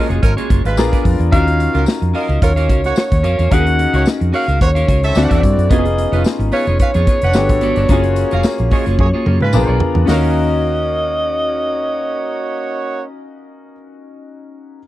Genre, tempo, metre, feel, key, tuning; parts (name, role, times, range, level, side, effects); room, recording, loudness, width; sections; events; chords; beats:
polished 1980s jazz-funk pop; 110 BPM; 4/4; swing 54% on 16ths; Eb minor; A4 = 438 Hz
breathy alto saxophone; melody; 0.0-13.0 s; Ab4 to Gb5; -20 LUFS; equal
warm horn section; second line; 0.0-13.0 s; F3 to Gb5; -23 LUFS; right 4 dB
clear baby grand piano; accompaniment; 0.0-14.8 s; Ab3 to F5; -21 LUFS; left 4 dB; analog chorus
clean electric guitar; riff; 0.0-13.8 s; Bb3 to Gb5; -25 LUFS; right 4 dB; wide subtle chorus
vintage muted fingered electric bass; bass; 0.1-13.7 s; F1 to Ab2; -16 LUFS; equal
modern studio drum kit; drums; 0.1-10.2 s; hi-hat, kick drum, snare drum, toms; -16 LUFS; equal
tambourine; percussion; 0.8-10.3 s; -32 LUFS; left 11 dB
little or no reverb; dry, close 1970s-style studio recording; -13 LUFS; side -15 dB against mid
0.0-10.1 A section; 10.1-12.3 B section
drum fill 9.0-10.1
0.0 Gbmaj9; 0.8 Bb7b9; 1.3 Ebm9; 5.2 D9; 5.7 Db7/F; 7.3 Gmaj9; 7.9 Gbmaj9; 9.5 Bb7b9; 10.1 Ebm9
0.23 0.78 | 1.32 1.87 2.42 2.97 | 3.51 4.06 4.61 5.16 | 5.71 6.25 6.80 7.35 | 7.89 8.44 8.99 9.54 | 10.09 10.63 11.18 11.73